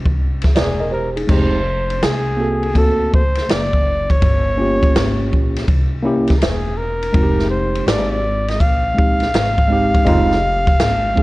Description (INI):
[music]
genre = hip hop, jazz-hop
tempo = 82 BPM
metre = 4/4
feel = swing 66% on 16ths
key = unclear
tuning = A4 = 440 Hz
[part]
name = upright bass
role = bass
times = 0.0-11.2 s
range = E1 to D2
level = -22 LUFS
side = equal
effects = transformer saturation
[part]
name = open jazz drum kit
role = drums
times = 0.1-11.2 s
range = crash cymbal, hi-hat, kick drum, ride cymbal, snare drum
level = -17 LUFS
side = equal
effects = vintage 12-bit sampler grit
[part]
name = warm flugelhorn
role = melody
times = 0.6-11.2 s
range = Ab4 to F5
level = -20 LUFS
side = equal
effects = none
[part]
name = mellow tine electric piano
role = accompaniment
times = 0.6-11.2 s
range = Ab3 to Eb5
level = -20 LUFS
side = right 1 dB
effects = slow stereo tremolo
[sound]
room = studio reverb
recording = worn, warbling old tape, cassette tape, warbly pitch drift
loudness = -14 LUFS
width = side -19 dB against mid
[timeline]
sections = 0.0-1.3 A section; 1.3-11.2 B section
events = none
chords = 0.0 Fm7 (rootless); 1.3 Fm7; 2.8 D7b13; 4.2 Gm7b5; 5.7 C7b9; 7.1 Fm7